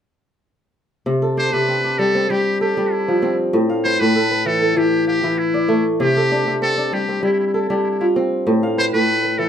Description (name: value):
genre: west african traditional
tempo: 97 BPM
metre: 4/4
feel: straight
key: C major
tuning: A4 = 444 Hz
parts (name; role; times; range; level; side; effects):
- kora; arpeggios; 1.1-9.5 s; A2 to F5; -17 LUFS; equal; none
- trumpet with metal mute; melody; 1.4-9.5 s; E4 to C5; -21 LUFS; equal; none
room: wet studio ambience, RT60 0.5 s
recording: band playing live in one room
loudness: -16 LUFS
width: side -8 dB against mid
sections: 1.1-9.5 A section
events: none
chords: 1.1 C5; 3.5 A5; 6.0 C5; 8.5 A5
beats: | 1.06 1.68 2.29 2.91 | 3.53 4.14 4.76 5.38 | 5.99 6.61 7.23 7.85 | 8.46 9.08